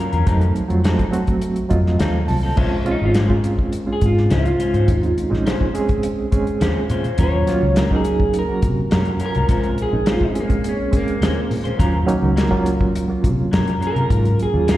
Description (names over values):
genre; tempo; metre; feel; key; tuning
straight-eighth soul blues; 104 BPM; 4/4; straight; Bb minor; A4 = 440 Hz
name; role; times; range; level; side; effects
electric guitar through a small old amp; melody; 0.0-14.8 s; Bb3 to Ab5; -23 LUFS; right 1 dB; spring reverb, slapback echo
reed electric piano; accompaniment; 0.0-14.8 s; Gb3 to A5; -22 LUFS; right 2 dB; fast tremolo
electric guitar through a small old amp; stabs; 0.0-14.8 s; Gb3 to C5; -27 LUFS; left 4 dB; spring reverb, slapback echo
vintage muted fingered electric bass; bass; 0.1-14.8 s; Ab1 to C3; -20 LUFS; equal; none
warm soul drum kit; drums; 0.1-14.8 s; crash cymbal, hi-hat, kick drum, snare drum; -21 LUFS; equal; none
room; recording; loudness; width
little or no reverb; live gig heard through the venue's PA, recital hall reverb; -16 LUFS; side -14 dB against mid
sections
0.0-2.6 A section; 2.6-14.8 B section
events
reed electric piano fill 1.4-2.6; clean electric guitar solo 2.6-14.8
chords
0.3 F7b9; 2.6 Bbm9; 7.2 Ebm9; 9.5 Bbm9; 11.8 Ebm9